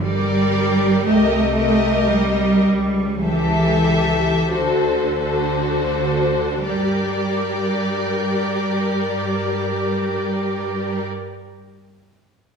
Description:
classical, slow romantic movement for string orchestra; 26-40 BPM (dotted quarters); 6/8; rubato; G minor; A4 = 440 Hz
rich chamber violin section; melody; 0.0-11.1 s; C5 to E5; -25 LUFS; left 4 dB
rich studio violin section; second line; 0.0-11.1 s; A4 to Bb4; -26 LUFS; left 3 dB
rich studio viola section; accompaniment; 0.0-11.0 s; F#4 to G4; -25 LUFS; equal
rich studio cello section; bass; 0.0-11.0 s; D3 to A3; -20 LUFS; right 1 dB
rich studio double bass section; bass; 0.0-11.0 s; G1 to G2; -27 LUFS; right 3 dB
moderate scoring stage reverb, RT60 1.6 s; studio reverb; -17 LUFS; side -6 dB against mid
0.0-6.7 A section; 6.7-10.6 B section
slowing down 0.0-6.7
0.0 Gm; 1.0 Cm7; 2.6 A7/C#; 4.5 D7; 6.7 Gm

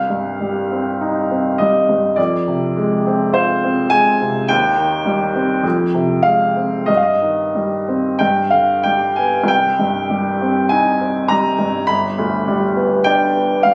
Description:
classical, romantic nocturne for solo piano; 46-53 BPM; 4/4; rubato; C minor; A4 = 440 Hz
clear upright piano; solo; 0.0-13.7 s; G1 to B5; -17 LUFS; equal
moderate recital hall reverb, RT60 1.6 s; recorded on a phone in the room, club reverb, compression; -17 LUFS; mono
0.0-13.7 A section
0.0 Cm; 2.2 Fm; 4.5 Cm/Eb; 5.6 Fmadd9; 6.9 Cm/G; 8.2 G; 9.5 Cm; 11.9 G

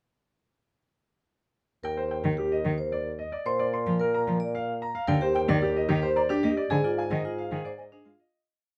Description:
classical, minimalist pattern music; 111 BPM; 3/4; straight; Eb major; A4 = 440 Hz
bright concert grand piano; melody; 1.8-8.4 s; G4 to C6; -33 LUFS; equal
vibraphone with medium mallets; arpeggios; 1.8-8.2 s; D4 to D5; -33 LUFS; equal
dark bassoon; bass; 1.8-8.2 s; Eb2 to Bb2; -34 LUFS; equal
warm cello; accompaniment; 2.2-8.2 s; D3 to Bb3; -30 LUFS; equal
mellow hollow silver concert flute; arpeggios; 5.3-7.8 s; F5 to Bb5; -36 LUFS; equal
light reverb; -27 LUFS; mono
1.8-8.3 A section
fade-out 6.7-8.3
1.8 Eb; 3.5 Bb5; 5.1 Ebmaj7; 6.7 Ab5

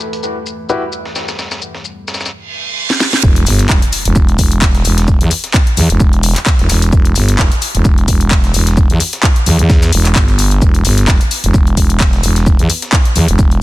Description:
bass house; 130 BPM; 4/4; swing 55% on 16ths; E minor; A4 = 440 Hz
dark analog pad; sustained chords; 0.0-13.6 s; E3 to A5; -34 LUFS; left 1 dB; chorus, sidechain pumping
breakbeat sampler-style drum kit; drums; 0.0-13.5 s; hi-hat, shaker, snare drum; -24 LUFS; left 2 dB; sidechain pumping on perc, high-pass filter on perc, low-pass filter on perc, small room ambience, high-pass filter on snare, low-pass filter on snare, sidechain pumping on hats, high-pass filter on hats, low-pass filter on hats
warm concert grand piano; stabs; 0.7-0.8 s; E4 to B4; -21 LUFS; left 2 dB; sidechain pumping, tape echo
reverse cymbal and impact; sound effects; 2.5-5.1 s; -20 LUFS; right 2 dB
house drum kit; drums; 2.9-13.6 s; handclaps, hi-hat, snare drum; -17 LUFS; left 2 dB; overdrive, small room ambience
growling FM bass; bass; 3.2-13.6 s; E1 to E2; -12 LUFS; equal; overdrive, sidechain pumping
electronic kick drum; drums; 3.2-13.5 s; -11 LUFS; equal; overdrive, small room ambience
little or no reverb; dense, heavily limited modern master; -10 LUFS; side -17 dB against mid
0.0-3.2 A section; 3.2-13.6 B section
reverse cymbal 2.5-3.2; drum fill 2.9-3.2; drop 3.2-13.6; impact 3.2-5.1
0.0 Em; 3.2 Emadd9

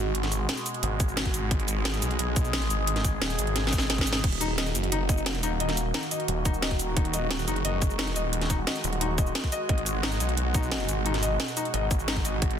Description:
dark technical drum and bass; 176 BPM; 4/4; straight; A4 = 440 Hz
sweeping resonant pad; sustained chords; 0.0-12.6 s; Cb3 to Ab4; -33 LUFS; right 1 dB; chorus, phaser, sidechain pumping
snarling distorted saw bass; bass; 0.0-12.6 s; Eb1 to Cb2; -29 LUFS; equal; sidechain pumping
drum and bass drum kit; drums; 0.1-12.6 s; crash cymbal, hi-hat, shaker, snare drum; -30 LUFS; right 1 dB; overdrive
electronic kick drum; drums; 1.0-12.5 s; -26 LUFS; equal; overdrive
felt-muted upright piano; arpeggios; 4.4-12.3 s; Eb4 to Eb5; -33 LUFS; left 5 dB; sidechain pumping, tape echo
light reverb; dense, heavily limited modern master; -24 LUFS; side -8 dB against mid
0.0-12.6 A section
drum fill 3.6-4.2
0.0 Abm7; 4.2 Ebm; 9.7 Abm7

